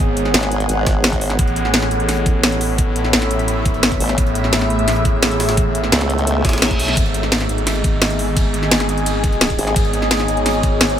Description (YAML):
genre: dark technical drum and bass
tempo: 172 BPM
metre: 4/4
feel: straight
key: G# phrygian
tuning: A4 = 439 Hz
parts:
  - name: dark analog pad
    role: sustained chords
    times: 0.0-11.0 s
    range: B3 to D#5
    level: -24 LUFS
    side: equal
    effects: chorus, sidechain pumping
  - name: phased detuned saw bass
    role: bass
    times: 0.0-11.0 s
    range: G#1 to B1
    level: -21 LUFS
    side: equal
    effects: phaser, overdrive, sidechain pumping
  - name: granular cloud pad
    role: texture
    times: 0.0-11.0 s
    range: A3 to B5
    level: -23 LUFS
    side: equal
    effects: built-in reverb, sidechain pumping
  - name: drum and bass drum kit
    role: drums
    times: 0.2-11.0 s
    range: hi-hat, ride cymbal, snare drum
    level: -19 LUFS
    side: equal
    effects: none
  - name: jungle sampler-style drum kit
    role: drums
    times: 0.2-10.9 s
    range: hi-hat, snare drum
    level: -29 LUFS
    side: equal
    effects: none
  - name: formant-sweep wobble bass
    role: bass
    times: 0.3-1.4, 4.0-6.4, 9.6-9.7 s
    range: G#1 to C#2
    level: -19 LUFS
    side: equal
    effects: chorus
  - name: electronic kick drum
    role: drums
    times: 0.9-10.7 s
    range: none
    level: -18 LUFS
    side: equal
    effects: none
  - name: reverse cymbal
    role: sound effects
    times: 6.4-7.0 s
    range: none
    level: -24 LUFS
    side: right 2 dB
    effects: none
room: light reverb, digital ambience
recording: none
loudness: -14 LUFS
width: side -10 dB against mid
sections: 0.0-11.0 A section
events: reverse cymbal 6.4-7.0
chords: 0.0 G#m; 1.4 Aadd9; 7.0 G#m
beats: 0.34 0.69 1.04 | 1.39 1.74 2.09 2.44 | 2.78 3.13 3.48 3.83 | 4.18 4.53 4.88 5.22 | 5.57 5.92 6.27 6.62 | 6.97 7.32 7.67 8.02 | 8.37 8.71 9.06 9.41 | 9.76 10.11 10.46 10.81